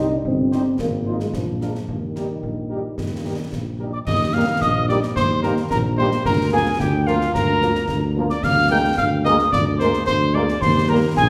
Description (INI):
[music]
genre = military-style march for wind band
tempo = 110 BPM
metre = 2/4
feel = straight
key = Eb major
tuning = A4 = 440 Hz
[part]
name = warm cornet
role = melody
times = 0.0-11.3 s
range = F4 to G5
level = -26 LUFS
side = equal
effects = none
[part]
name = dark euphonium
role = second line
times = 0.0-3.5 s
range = Eb3 to D4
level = -26 LUFS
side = equal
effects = none
[part]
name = mellow French horn section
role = accompaniment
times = 0.0-11.0 s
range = G3 to Bb4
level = -30 LUFS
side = equal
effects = none
[part]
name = mellow tuba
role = bass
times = 0.0-11.3 s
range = G1 to Eb2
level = -25 LUFS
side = equal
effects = none
[part]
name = concert bass drum, concert snare drum and clash cymbals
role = drums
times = 0.2-11.3 s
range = none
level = -29 LUFS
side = equal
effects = none
[part]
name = mellow piccolo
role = second line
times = 3.9-11.3 s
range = F5 to G6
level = -25 LUFS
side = equal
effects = none
[part]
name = dark trombone section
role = sustained chords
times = 4.3-11.0 s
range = F3 to Bb3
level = -32 LUFS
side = equal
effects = none
[sound]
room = wet recital hall reverb, RT60 1.4 s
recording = recorded in a church or concert hall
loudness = -20 LUFS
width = mono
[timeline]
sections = 0.0-4.1 A section; 4.1-11.3 B section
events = none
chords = 0.0 Cm; 0.8 Fm7/Ab; 1.3 Bb7; 1.9 Eb; 6.3 Bb/D; 8.4 Bb7/D; 10.6 Eb